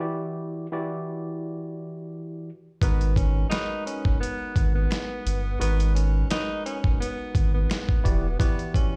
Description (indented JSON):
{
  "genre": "hip hop, boom-bap hip-hop",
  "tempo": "86 BPM",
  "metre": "4/4",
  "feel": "swing 55% on 16ths",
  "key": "G# minor",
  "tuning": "A4 = 438 Hz",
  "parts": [
    { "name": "tine electric piano", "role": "accompaniment", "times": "0.0-9.0 s", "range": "E3 to D5", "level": "-35 LUFS", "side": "equal", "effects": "high-pass filter, low-pass filter" },
    { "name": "breathy tenor saxophone", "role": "melody", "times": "2.8-9.0 s", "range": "B3 to D#4", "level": "-35 LUFS", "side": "equal", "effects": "high-pass filter, low-pass filter, digital delay" },
    { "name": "saturated sub bass", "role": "bass", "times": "2.8-8.4 s", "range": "E1 to G#1", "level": "-26 LUFS", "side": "equal", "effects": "none" },
    { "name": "dusty soul sampler-style drum kit", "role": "drums", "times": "2.8-8.9 s", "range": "hi-hat, kick drum, snare drum", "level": "-27 LUFS", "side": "equal", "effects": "overdrive" },
    { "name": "finger snaps", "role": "percussion", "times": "3.5-7.9 s", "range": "none", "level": "-44 LUFS", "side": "equal", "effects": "none" }
  ],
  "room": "little or no reverb",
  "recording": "played on a big sound system in a bare room, stone room reverb",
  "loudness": "-25 LUFS",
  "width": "mono",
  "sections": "0.0-9.0 A section",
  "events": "break 0.0-2.8",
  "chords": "0.0 Em9; 2.8 G#m9; 8.0 Em9",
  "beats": "| 0.02 0.72 1.42 2.12 | 2.81 3.51 4.21 4.91 | 5.60 6.30 7.00 7.70 | 8.39"
}